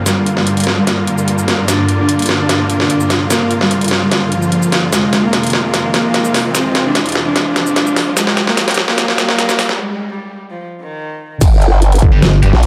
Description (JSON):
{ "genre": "heavy wobble dubstep", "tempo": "148 BPM", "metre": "4/4", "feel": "half-time", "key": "unclear", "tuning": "A4 = 438 Hz", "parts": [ { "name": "supersaw chords", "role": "sustained chords", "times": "0.0-9.8 s", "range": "F2 to G4", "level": "-21 LUFS", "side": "equal", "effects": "sidechain pumping" }, { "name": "riser", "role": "sound effects", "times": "3.5-9.8 s", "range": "none", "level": "-28 LUFS", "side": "equal", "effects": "none" }, { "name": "dark cello", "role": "melody", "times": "0.1-11.3 s", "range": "Eb3 to D4", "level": "-19 LUFS", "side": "equal", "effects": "low-pass filter, tape echo" }, { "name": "dubstep drum kit", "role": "drums", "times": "0.1-12.7 s", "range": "crash cymbal, hi-hat, shaker, snare drum", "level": "-18 LUFS", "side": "equal", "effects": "overdrive, high-pass filter on snare, high-pass filter on hats, high-pass filter on toms, high-pass filter on perc, high-pass filter on cymbals, high-pass filter on room" }, { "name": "growl bass", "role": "bass", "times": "11.4-12.7 s", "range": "G1 to Bb1", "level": "-12 LUFS", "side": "equal", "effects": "chorus, overdrive" }, { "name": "electronic kick drum", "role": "drums", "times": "11.4-12.1 s", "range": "none", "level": "-14 LUFS", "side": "equal", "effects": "none" }, { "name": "pulsing pluck wobble bass", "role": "bass", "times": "12.0-12.5 s", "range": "G1", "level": "-13 LUFS", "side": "equal", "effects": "chorus, overdrive" }, { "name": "scooped high-gain guitar", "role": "stabs", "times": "12.1-12.5 s", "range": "G3 to G4", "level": "-26 LUFS", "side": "equal", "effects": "distortion, tape echo" } ], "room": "moderate plate reverb, RT60 1.2 s", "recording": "dark, warm production, high-pass filter", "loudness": "-14 LUFS", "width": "mono", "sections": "0.0-11.4 A section; 11.4-12.7 B section", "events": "build-up 0.0-11.4; drum fill 0.0-9.8; filter sweep on cello 0.0-11.4; filter sweep 0.0-11.4; riser 3.5-9.8; break 9.8-11.4; drop 11.4-12.7", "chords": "0.0 Gm7; 4.9 Fm; 11.4 N.C." }